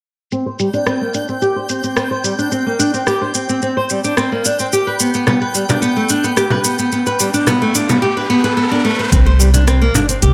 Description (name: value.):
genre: organic downtempo.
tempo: 109 BPM.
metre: 4/4.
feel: straight.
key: unclear.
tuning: A4 = 438 Hz.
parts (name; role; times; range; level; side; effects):
flamenco guitar; arpeggios; 0.3-10.3 s; G3 to C5; -18 LUFS; equal; low-pass filter, analog delay.
deep house drum kit; drums; 0.3-10.3 s; hi-hat, rim click, shaker; -22 LUFS; equal; low-pass filter on perc, low-pass filter on snare, low-pass filter on hats.
twinkling granular texture; texture; 0.7-8.0 s; G5; -29 LUFS; equal; built-in reverb.
riser; sound effects; 6.6-9.1 s; none; -28 LUFS; equal; none.
frame drum; percussion; 5.3-10.1 s; none; -22 LUFS; equal; none.
upright bass; bass; 9.1-10.3 s; G1 to C2; -14 LUFS; equal; sidechain pumping.
electronic kick drum; drums; 9.1-9.2 s; none; -16 LUFS; equal; none.
room: moderate plate reverb, RT60 1.3 s, studio ambience.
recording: dreamy mix soaked in reverb.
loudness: -16 LUFS.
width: mono.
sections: 0.3-9.1 A section; 9.1-10.3 B section.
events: filter sweep on drum 0.3-9.1; filter sweep on nylon-string guitar 0.3-9.1; riser 6.6-9.1.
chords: 0.3 C5; 4.7 G; 9.1 C5.